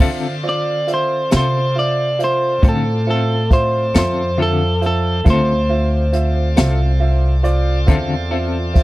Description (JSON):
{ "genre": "slow blues", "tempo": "46 BPM (dotted quarters)", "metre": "12/8", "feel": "straight", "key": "D minor", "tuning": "A4 = 444 Hz", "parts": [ { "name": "clear upright piano", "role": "accompaniment", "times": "0.0-8.8 s", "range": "F4 to G5", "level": "-24 LUFS", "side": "right 3 dB", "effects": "none" }, { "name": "semi-hollow electric guitar", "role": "accompaniment", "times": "0.0-8.6 s", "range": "D3 to A4", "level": "-22 LUFS", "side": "left 5 dB", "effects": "tremolo" }, { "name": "bright tonewheel organ", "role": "sustained chords", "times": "0.0-8.8 s", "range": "C4 to D5", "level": "-30 LUFS", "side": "equal", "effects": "slow rotary speaker, overdrive" }, { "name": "upright bass", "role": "bass", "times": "0.0-8.8 s", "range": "C2 to D3", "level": "-18 LUFS", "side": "equal", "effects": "none" }, { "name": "jazz brush drum kit", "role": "drums", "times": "0.0-8.8 s", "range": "crash cymbal, hi-hat, kick drum, snare drum", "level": "-14 LUFS", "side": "equal", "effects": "none" }, { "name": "electric guitar at the edge of break-up", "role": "melody", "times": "0.5-7.9 s", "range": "A4 to D5", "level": "-20 LUFS", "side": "equal", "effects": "none" } ], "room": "little or no reverb", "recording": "dry, close 1970s-style studio recording", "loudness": "-14 LUFS", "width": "side -18 dB against mid", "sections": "0.0-8.8 A section", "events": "none", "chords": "0.0 Dm7" }